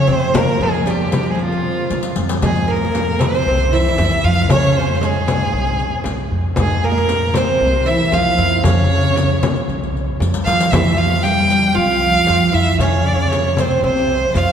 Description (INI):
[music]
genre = Arabic maqam ensemble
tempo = 116 BPM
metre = 4/4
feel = straight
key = F maqam nahawand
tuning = A4 = 440 Hz
[part]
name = clear violin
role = melody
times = 0.0-14.5 s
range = F4 to G5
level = -19 LUFS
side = right 1 dB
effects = none
[part]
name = dark symphonic cello section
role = second line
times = 0.0-14.5 s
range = F2 to G3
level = -21 LUFS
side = equal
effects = none
[part]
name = oud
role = second line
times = 0.0-14.5 s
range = F3 to G4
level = -23 LUFS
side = right 3 dB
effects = none
[part]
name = upright bass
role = bass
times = 0.0-14.4 s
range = C2 to F3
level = -20 LUFS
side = equal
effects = none
[part]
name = rich cello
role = drone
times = 0.0-2.5 s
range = F2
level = -31 LUFS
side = right 2 dB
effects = none
[part]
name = frame drum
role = percussion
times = 0.3-14.5 s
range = none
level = -23 LUFS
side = left 2 dB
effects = none
[part]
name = riq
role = percussion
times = 0.3-14.5 s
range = none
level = -28 LUFS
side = left 3 dB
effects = none
[sound]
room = wet cathedral reverb, RT60 4.5 s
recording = recorded in a church or concert hall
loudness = -14 LUFS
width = side -8 dB against mid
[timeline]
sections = 0.0-2.4 A section; 2.4-14.5 B section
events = drum fill 1.9-2.4, 10.2-10.7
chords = none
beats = | 0.35 0.87 1.39 1.90 | 2.42 2.94 3.46 3.98 | 4.49 5.01 5.53 6.05 | 6.57 7.09 7.61 8.13 | 8.64 9.16 9.68 10.20 | 10.72 11.24 11.76 12.28 | 12.80 13.31 13.83 14.35